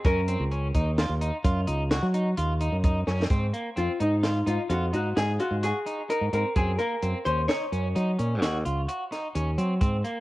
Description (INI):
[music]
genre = progressive instrumental, band music in an uneven meter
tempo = 129 BPM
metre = 7/4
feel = straight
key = unclear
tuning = A4 = 439 Hz
[part]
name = archtop guitar, miked and amplified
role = melody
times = 0.0-9.3 s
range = Eb4 to Db5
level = -28 LUFS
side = left 1 dB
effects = cassette tape, analog delay
[part]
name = electric guitar at the edge of break-up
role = arpeggios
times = 0.0-10.2 s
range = Bb3 to Ab4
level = -32 LUFS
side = right 1 dB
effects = spring reverb, cassette tape
[part]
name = fingered electric bass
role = bass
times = 0.0-10.0 s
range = Db2 to Gb3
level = -26 LUFS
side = equal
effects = none
[part]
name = compact cocktail drum kit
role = drums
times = 0.0-10.2 s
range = hi-hat, kick drum, snare drum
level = -27 LUFS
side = equal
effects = none
[sound]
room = little or no reverb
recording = home recording on cassette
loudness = -24 LUFS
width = side -18 dB against mid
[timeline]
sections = 0.0-3.3 A section; 3.3-10.2 B section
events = drum fill 3.1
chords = 0.1 Gb; 3.3 Ab; 6.6 Gb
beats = | 0.05 0.52 0.98 1.45 1.91 2.38 2.84 | 3.31 3.77 4.24 4.70 5.17 5.63 6.10 | 6.56 7.03 7.49 7.96 8.42 8.88 9.35 | 9.81